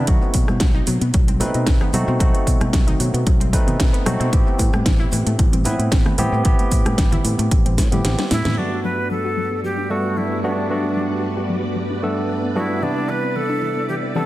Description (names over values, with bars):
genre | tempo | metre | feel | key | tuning
nu-disco, nu disco | 113 BPM | 4/4 | swing 53% on 16ths | G major | A4 = 440 Hz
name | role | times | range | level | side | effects
barky tine electric piano | accompaniment | 0.0-14.3 s | G2 to B4 | -24 LUFS | right 1 dB | sidechain pumping, dub echo
wide unison pluck | arpeggios | 0.0-14.2 s | E3 to F#4 | -28 LUFS | left 3 dB | sidechain pumping, dub echo
fingered electric bass | bass | 0.0-8.5 s | A1 to B2 | -21 LUFS | equal | sidechain pumping
electronic kick drum | drums | 0.1-7.9 s | none | -17 LUFS | equal | studio reverb
house drum kit | drums | 0.1-8.6 s | hi-hat, rim click, snare drum | -26 LUFS | right 1 dB | low-pass filter on hats, studio reverb, low-pass filter on snare
maracas and congas | percussion | 0.1-8.6 s | none | -29 LUFS | right 1 dB | none
mellow hollow jazz flute | melody | 8.3-14.3 s | D4 to B4 | -24 LUFS | equal | dub echo
string machine, full ensemble | sustained chords | 8.6-14.3 s | G3 to D5 | -29 LUFS | equal | phaser, ensemble chorus, vintage 12-bit sampler grit, sidechain pumping
room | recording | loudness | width
light reverb | dense, heavily limited modern master | -16 LUFS | side -16 dB against mid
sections
0.0-8.6 A section; 8.6-14.3 B section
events
drum fill 7.8-8.6; kick drops out 8.0-8.6; band accent 8.4; filter sweep on string machine 8.6-14.3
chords
0.1 B7b9; 4.3 Am7; 8.6 Gmaj7; 12.8 Cmaj9